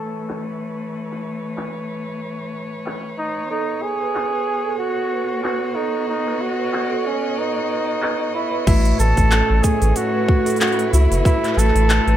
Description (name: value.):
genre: folktronica.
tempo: 93 BPM.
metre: 4/4.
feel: swing 56% on 16ths.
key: unclear.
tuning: A4 = 439 Hz.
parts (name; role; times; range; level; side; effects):
breathy flugelhorn; melody; 0.0-12.2 s; C#4 to A4; -23 LUFS; equal; ping-pong delay, plate reverb.
warm string quartet; sustained chords; 0.0-12.2 s; E3 to G#5; -28 LUFS; left 2 dB; low-pass filter, plate reverb.
organic electronic drum kit; drums; 0.3-12.2 s; cabasa, crash cymbal, handclaps, hi-hat; -26 LUFS; equal; overdrive, low-pass filter on hats, low-pass filter on perc, low-pass filter on snare, low-pass filter on cymbals, low-pass filter on room.
large celesta; second line; 3.5-12.2 s; A4 to B5; -25 LUFS; right 12 dB; ping-pong delay, plate reverb.
nylon-string guitar; arpeggios; 8.7-12.2 s; A2 to F#4; -23 LUFS; left 3 dB; none.
round analog bass; bass; 8.7-12.2 s; F#1 to C#2; -16 LUFS; equal; tube saturation.
electronic kick drum; drums; 8.7-11.4 s; none; -17 LUFS; equal; overdrive.
room: light reverb.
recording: none.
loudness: -18 LUFS.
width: side -11 dB against mid.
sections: 0.0-8.7 A section; 8.7-12.2 B section.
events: filter sweep on string quartet 0.0-8.7.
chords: 0.0 A; 3.5 B7; 8.7 A6.